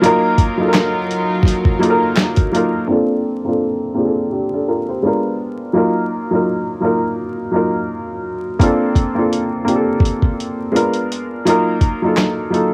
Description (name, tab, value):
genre	lo-fi hip hop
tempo	84 BPM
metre	4/4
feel	swing 58% on 16ths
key	Bb major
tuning	A4 = 437 Hz
part	warm upright piano	accompaniment	0.0-12.7 s	Gb3 to C5	-18 LUFS	equal	cassette tape, low-pass filter
part	rich studio string section	sustained chords	0.0-2.9 s	Gb3 to Bb4	-26 LUFS	equal	low-pass filter, cassette tape
part	dusty soul sampler-style drum kit	drums	0.0-2.7, 8.6-12.7 s	handclaps, hi-hat, kick drum, snare drum	-18 LUFS	equal	none
room	light reverb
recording	home recording on cassette, vinyl crackle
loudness	-17 LUFS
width	mono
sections	0.0-2.9 A section; 2.9-12.7 B section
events	filter sweep on upright piano 2.9-12.7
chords	0.0 Ebmadd9; 2.9 Bbmaj9; 5.0 Bb7b9; 5.7 Ebmadd9; 8.6 Bbmaj9; 10.7 Bb7b9; 11.5 Ebmadd9